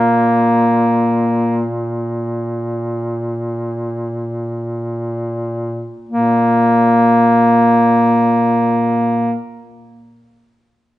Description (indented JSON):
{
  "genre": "caucasian folk, Caucasian lament",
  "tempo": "free time",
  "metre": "none",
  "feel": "none",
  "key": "unclear",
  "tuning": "A4 = 440 Hz",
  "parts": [
    { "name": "warm duduk", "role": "melody", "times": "0.0-9.4 s", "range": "Bb3", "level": "-12 LUFS", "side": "equal", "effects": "none" },
    { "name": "mellow duduk", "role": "drone", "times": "0.0-9.4 s", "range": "Bb2", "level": "-21 LUFS", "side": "equal", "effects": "none" }
  ],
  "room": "moderate recital hall reverb, RT60 1.8 s",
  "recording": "nothing above 10.3 kHz",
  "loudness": "-13 LUFS",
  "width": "side -15 dB against mid",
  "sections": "0.0-6.1 A section; 6.1-11.0 B section",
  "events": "slowing down 0.0-6.1",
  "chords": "none"
}